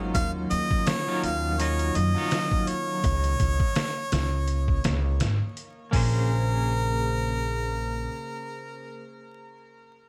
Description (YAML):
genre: trip hop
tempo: 83 BPM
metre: 4/4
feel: swing 55% on 16ths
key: Bb minor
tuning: A4 = 435 Hz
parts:
  - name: clean electric guitar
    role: accompaniment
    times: 0.0-9.1 s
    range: Gb3 to Eb5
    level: -35 LUFS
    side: equal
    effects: tremolo, tape echo
  - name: warbly tape-like pad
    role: sustained chords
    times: 0.0-9.0 s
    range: Db3 to C5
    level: -39 LUFS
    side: equal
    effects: chorus, built-in reverb
  - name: upright bass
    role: bass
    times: 0.0-8.1 s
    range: Ab1 to Gb2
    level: -28 LUFS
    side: equal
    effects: none
  - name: bowed-like drone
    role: texture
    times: 0.0-5.9 s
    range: Bb3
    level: -47 LUFS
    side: equal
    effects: none
  - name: clear harmonica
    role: melody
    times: 0.1-9.0 s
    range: Bb4 to F5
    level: -33 LUFS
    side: equal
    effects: tape echo
  - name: trip hop sampler-style drum kit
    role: drums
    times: 0.1-6.1 s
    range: hi-hat, kick drum, snare drum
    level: -30 LUFS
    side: equal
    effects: studio reverb
room: digital ambience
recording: vinyl crackle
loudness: -26 LUFS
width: mono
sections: 0.0-5.9 A section; 5.9-8.8 B section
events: none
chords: 0.1 Ebm9; 3.0 Bbm/Db; 5.9 Bbm9